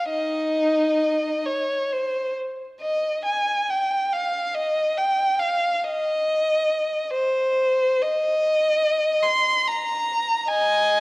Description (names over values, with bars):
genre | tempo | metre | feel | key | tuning
classical, free, expressive piece for unaccompanied violin | 64-75 BPM | 3/4 | rubato | unclear | A4 = 439 Hz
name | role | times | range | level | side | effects
rich violin | solo | 0.0-11.0 s | Eb4 to C6 | -20 LUFS | equal | none
room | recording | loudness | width
moderate concert hall reverb, RT60 2.1 s | worn, warbling old tape, cassette tape, warbly pitch drift | -20 LUFS | side -22 dB against mid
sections
0.0-11.0 A section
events
none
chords
none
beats
| 0.11 1.03 1.92 | 2.79 3.68 4.54 | 5.40 6.26 7.13 | 8.02 8.83 9.64 | 10.49